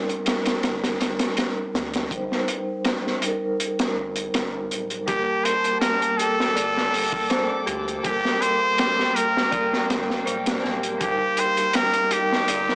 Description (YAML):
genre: trip hop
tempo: 81 BPM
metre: 4/4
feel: swing 53% on 16ths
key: G minor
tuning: A4 = 437 Hz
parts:
  - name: vibraphone with soft mallets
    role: accompaniment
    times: 0.0-12.8 s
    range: G3 to C5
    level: -27 LUFS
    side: equal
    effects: tremolo, vintage 12-bit sampler grit, tape echo
  - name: crunchy breakbeat drum kit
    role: drums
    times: 0.1-12.8 s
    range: hi-hat, kick drum, snare drum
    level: -25 LUFS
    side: equal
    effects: none
  - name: soft dub sub bass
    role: bass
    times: 0.6-12.8 s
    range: D1 to D2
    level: -42 LUFS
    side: equal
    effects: transformer saturation
  - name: trumpet with straight mute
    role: melody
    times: 5.1-12.8 s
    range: G4 to C5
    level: -22 LUFS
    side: equal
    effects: tape echo
  - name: dark studio violin section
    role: sustained chords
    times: 5.1-12.8 s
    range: Bb3 to D6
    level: -31 LUFS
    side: equal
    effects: vintage 12-bit sampler grit
  - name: dark detuned synth bell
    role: arpeggios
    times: 5.1-12.8 s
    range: G4 to D5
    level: -32 LUFS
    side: equal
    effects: chorus, phaser, vintage 12-bit sampler grit, tape echo
room: light reverb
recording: blown-out, overdriven recording, overdrive, small speaker sound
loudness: -20 LUFS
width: side -30 dB against mid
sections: 0.0-12.8 A section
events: none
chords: 0.0 Eb/G; 5.1 Gmadd9; 11.0 Eb/G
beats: 0.63 1.37 | 2.11 2.85 3.60 4.33 | 5.08 5.82 6.56 7.30 | 8.04 8.78 9.52 10.26 | 11.00 11.74 12.48